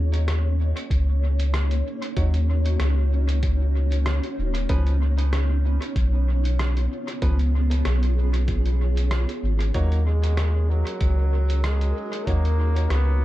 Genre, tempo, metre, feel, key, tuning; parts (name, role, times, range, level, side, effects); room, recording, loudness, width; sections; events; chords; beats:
ambient dub; 95 BPM; 4/4; swing 55% on 16ths; Eb minor; A4 = 440 Hz
granular cloud pad; sustained chords; 0.0-13.2 s; Bb3 to Db5; -31 LUFS; equal; built-in reverb
soft dub sub bass; bass; 0.0-13.2 s; Eb1 to Eb2; -20 LUFS; equal
lo-fi sampler-style drum kit; drums; 0.1-13.0 s; hi-hat, rim click; -34 LUFS; equal; dub echo
electronic kick drum; drums; 0.9-12.4 s; -27 LUFS; equal
clear upright piano; stabs; 2.2-12.4 s; F3 to Db5; -37 LUFS; right 2 dB; dub echo
clear trombone; melody; 9.7-13.2 s; Gb3 to Cb4; -31 LUFS; right 1 dB; dub echo
little or no reverb; echo-heavy mix; -20 LUFS; side -16 dB against mid
0.0-13.2 A section
0.0 Ebm7; 4.7 Db7; 9.7 Ebm7
0.28 0.91 1.54 | 2.17 2.80 3.43 4.06 | 4.70 5.33 5.96 6.59 | 7.22 7.85 8.48 9.12 | 9.75 10.38 11.01 11.64 | 12.28 12.91